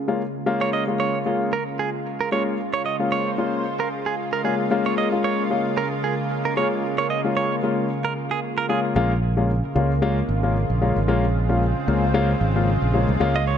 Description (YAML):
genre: afrobeats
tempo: 113 BPM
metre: 4/4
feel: swing 55% on 16ths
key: Bb minor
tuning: A4 = 441 Hz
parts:
  - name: lush unison pad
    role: sustained chords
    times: 0.0-13.6 s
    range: Db3 to C5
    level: -27 LUFS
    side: right 1 dB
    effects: chorus
  - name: warm grand piano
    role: accompaniment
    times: 0.1-13.4 s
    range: Ab3 to F4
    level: -24 LUFS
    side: left 4 dB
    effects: none
  - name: direct-recorded clean electric guitar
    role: riff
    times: 0.6-8.8, 13.4-13.6 s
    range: Ab4 to Eb5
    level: -26 LUFS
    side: right 7 dB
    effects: digital delay
  - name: fingered electric bass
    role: bass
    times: 9.0-13.6 s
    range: Ab1 to Db2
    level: -21 LUFS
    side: right 1 dB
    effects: none
room: light reverb, digital ambience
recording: dark, warm production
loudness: -20 LUFS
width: side -8 dB against mid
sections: 0.0-9.0 A section; 9.0-13.6 B section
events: none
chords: 0.5 Bbm7; 4.7 Db6; 9.0 Bbm7